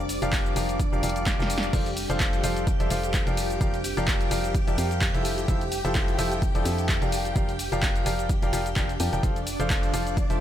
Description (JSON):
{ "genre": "piano house", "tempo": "128 BPM", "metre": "4/4", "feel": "swing 55% on 16ths", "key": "unclear", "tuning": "A4 = 438 Hz", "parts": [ { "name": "string machine, violins", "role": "sustained chords", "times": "0.0-10.4 s", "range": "D4 to D6", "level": "-34 LUFS", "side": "right 1 dB", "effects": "ensemble chorus, sidechain pumping" }, { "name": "organ-like FM bass", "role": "bass", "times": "0.0-10.4 s", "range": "F1 to F2", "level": "-30 LUFS", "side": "equal", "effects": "tube saturation, sidechain pumping" }, { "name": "deep dark ambient pad", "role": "texture", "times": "0.0-10.4 s", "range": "D4 to F5", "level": "-36 LUFS", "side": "right 1 dB", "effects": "chorus, built-in reverb, sidechain pumping" }, { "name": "punchy analog drum machine", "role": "drums", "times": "0.1-10.4 s", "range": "crash cymbal, handclaps, hi-hat, shaker, snare drum", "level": "-31 LUFS", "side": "equal", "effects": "overdrive" }, { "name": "clear upright piano", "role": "riff", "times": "0.2-10.4 s", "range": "F3 to G5", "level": "-29 LUFS", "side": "left 2 dB", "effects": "sidechain pumping, digital delay" }, { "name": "electronic kick drum", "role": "drums", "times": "0.3-10.3 s", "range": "none", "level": "-26 LUFS", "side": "equal", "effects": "overdrive" } ], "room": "digital ambience", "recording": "none", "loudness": "-23 LUFS", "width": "side -11 dB against mid", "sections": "0.0-1.7 A section; 1.7-10.4 B section", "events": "drum fill 1.3-1.7; drop 1.7-10.4", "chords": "0.0 Bb6/F; 1.7 Dm7/F; 7.1 Bb6/F; 9.2 Dm7/F" }